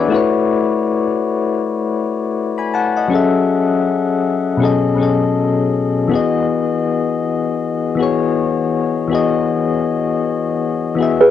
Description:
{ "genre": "hip hop", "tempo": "80 BPM", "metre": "4/4", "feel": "swing 59% on 16ths", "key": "E major", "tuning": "A4 = 436 Hz", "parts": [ { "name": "soft electric-piano-like synth keys", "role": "accompaniment", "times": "0.0-11.3 s", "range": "B2 to B5", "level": "-15 LUFS", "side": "left 5 dB", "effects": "chorus, tremolo, cassette tape" }, { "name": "mellow tine electric piano", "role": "second line", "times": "11.2-11.3 s", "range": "G#4 to B4", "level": "-6 LUFS", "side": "right 2 dB", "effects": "medium stereo tremolo, cassette tape" } ], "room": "moderate studio reverb, RT60 0.5 s", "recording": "home recording on cassette", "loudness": "-15 LUFS", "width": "side -10 dB against mid", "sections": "0.0-11.3 A section", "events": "none", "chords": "0.1 A6; 3.1 F#m9; 4.6 B13; 6.1 Emaj7", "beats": "| 0.11 0.86 1.61 2.36 | 3.11 3.86 4.61 5.36 | 6.11 6.86 7.61 8.36 | 9.11 9.86 10.61" }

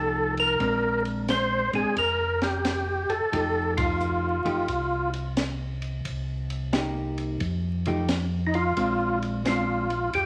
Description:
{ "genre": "soul jazz organ trio", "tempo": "88 BPM", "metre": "4/4", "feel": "swing 66% on 8ths", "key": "F mixolydian", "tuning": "A4 = 440 Hz", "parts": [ { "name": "percussive tonewheel organ", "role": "melody", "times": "0.0-10.3 s", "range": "Eb4 to C5", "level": "-27 LUFS", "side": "equal", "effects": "overdrive, chorus vibrato, stopped rotary speaker" }, { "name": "hollow-body jazz guitar", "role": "accompaniment", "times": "0.0-9.9 s", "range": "F3 to G4", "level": "-33 LUFS", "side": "equal", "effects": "none" }, { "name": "mellow tonewheel organ", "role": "bass", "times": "0.0-10.3 s", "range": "F1 to F2", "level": "-33 LUFS", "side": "equal", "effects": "slow rotary speaker" }, { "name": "compact cocktail drum kit", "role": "drums", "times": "0.4-10.3 s", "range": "hi-hat, kick drum, ride cymbal, snare drum", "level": "-35 LUFS", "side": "equal", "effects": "none" } ], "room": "moderate large studio reverb, RT60 1.2 s", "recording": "vinyl crackle", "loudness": "-26 LUFS", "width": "mono", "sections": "0.0-10.3 A section", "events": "band accent 3.7-4.0", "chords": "0.0 F9; 0.6 Bb9; 3.3 F9; 6.1 Cm7; 7.4 F9; 8.8 Bb9", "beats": "| 0.60 1.28 1.97 2.65 | 3.33 4.01 4.69 5.37 | 6.05 6.73 7.41 8.09 | 8.77 9.46 10.14" }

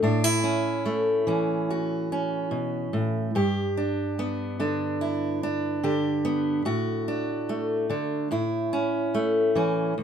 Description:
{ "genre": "folk", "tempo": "72 BPM", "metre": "4/4", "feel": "straight", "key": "unclear", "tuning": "A4 = 444 Hz", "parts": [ { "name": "fingerpicked steel-string acoustic guitar", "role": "solo", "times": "0.0-10.0 s", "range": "D2 to G4", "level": "-24 LUFS", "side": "equal", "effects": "none" } ], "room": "moderate studio reverb, RT60 0.8 s", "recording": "minimal, uncompressed stereo recording", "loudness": "-24 LUFS", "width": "side -8 dB against mid", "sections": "0.0-10.0 A section", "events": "none", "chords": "0.0 A; 3.3 G; 6.7 D/A; 8.3 A", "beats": "| 0.03 0.85 1.69 2.52 | 3.35 4.17 5.01 5.84 | 6.67 7.50 8.33 9.16 | 9.99" }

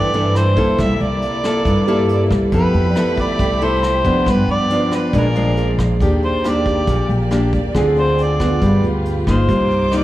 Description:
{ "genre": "bossa nova", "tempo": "138 BPM", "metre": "4/4", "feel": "straight", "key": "Eb major from 6.0 s", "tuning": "A4 = 442 Hz", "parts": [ { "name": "overdriven harmonica", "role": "melody", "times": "0.0-10.0 s", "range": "Bb4 to E5", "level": "-21 LUFS", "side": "equal", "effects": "none" }, { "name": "nylon-string guitar", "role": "accompaniment", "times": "0.0-10.0 s", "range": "G2 to A4", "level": "-19 LUFS", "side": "left 1 dB", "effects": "none" }, { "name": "warm symphonic violin section", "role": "sustained chords", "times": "0.0-10.0 s", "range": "A3 to D6", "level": "-26 LUFS", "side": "equal", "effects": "none" }, { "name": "upright bass", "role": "bass", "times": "0.0-10.0 s", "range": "G1 to G2", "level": "-19 LUFS", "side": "equal", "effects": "none" }, { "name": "vintage brush drum kit", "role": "drums", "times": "0.1-10.0 s", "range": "hi-hat, kick drum, rim click", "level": "-25 LUFS", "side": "equal", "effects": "none" }, { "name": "mellow tine electric piano", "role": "accompaniment", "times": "1.9-10.0 s", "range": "F4 to D5", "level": "-24 LUFS", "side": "right 1 dB", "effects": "medium stereo tremolo" } ], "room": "wet recital hall reverb, RT60 1.6 s", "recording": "recorded in a church or concert hall", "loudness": "-14 LUFS", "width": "side -15 dB against mid", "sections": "0.0-6.0 A section; 6.0-10.0 B section", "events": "harmonica solo 6.0-10.0", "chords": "0.0 C69; 2.5 Fmaj9#11; 4.3 G7; 5.1 Bb7; 6.0 Ebmaj7; 7.7 Dm7b5; 8.6 G7b9; 9.5 Cm11", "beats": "0.35 | 0.79 1.22 1.65 2.09 | 2.52 2.96 3.39 3.83 | 4.26 4.70 5.13 5.57 | 6.00 6.44 6.87 7.31 | 7.74 8.18 8.61 9.05 | 9.48 9.92" }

